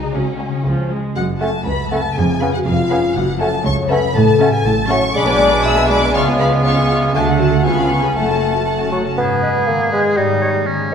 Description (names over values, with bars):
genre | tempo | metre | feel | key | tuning
cinematic | 120 BPM | 2/4 | straight | F# minor | A4 = 436 Hz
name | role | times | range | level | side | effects
folk marimba with medium mallets | melody | 0.0-0.6 s | F#4 to G#4 | -29 LUFS | left 5 dB | none
rich studio violin section | melody | 0.0-9.2 s | E#5 to C#6 | -27 LUFS | left 3 dB | none
rich studio violin section | second line | 0.0-8.9 s | C#4 to E6 | -23 LUFS | left 2 dB | none
rich studio viola section | accompaniment | 0.0-9.2 s | E#3 to B4 | -25 LUFS | equal | none
concert harp | arpeggios | 0.0-10.9 s | E#2 to B4 | -22 LUFS | left 1 dB | none
clear studio double bass section | bass | 0.0-9.0 s | E#1 to D2 | -24 LUFS | right 3 dB | none
rich studio cello section | bass | 0.0-9.0 s | C#2 to D3 | -23 LUFS | right 4 dB | none
dark French horn section | sustained chords | 1.2-10.9 s | G#3 to E5 | -20 LUFS | left 4 dB | none
bright clarinet | second line | 1.4-10.9 s | B3 to C#5 | -25 LUFS | equal | none
mellow hollow silver concert flute | second line | 1.4-10.9 s | D#5 to C#6 | -24 LUFS | right 1 dB | none
warm bassoon | accompaniment | 1.4-10.7 s | F#3 to B3 | -21 LUFS | right 2 dB | none
clear oboe | second line | 9.2-10.9 s | C#4 to G#4 | -20 LUFS | right 1 dB | none
room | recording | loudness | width
wet scoring stage reverb, RT60 2.1 s | minimal, uncompressed stereo recording | -13 LUFS | side -7 dB against mid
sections
0.0-1.2 A section; 1.2-9.2 B section; 9.2-10.9 C section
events
none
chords
0.2 C#sus4; 0.7 C#; 1.2 F#m; 2.2 C#7/E#; 3.2 F#m; 4.2 F#m/A; 5.2 G#dim/B; 6.2 C#7; 7.1 D; 7.7 C#7; 8.2 F#m; 9.2 G#m; 10.2 D#7/G#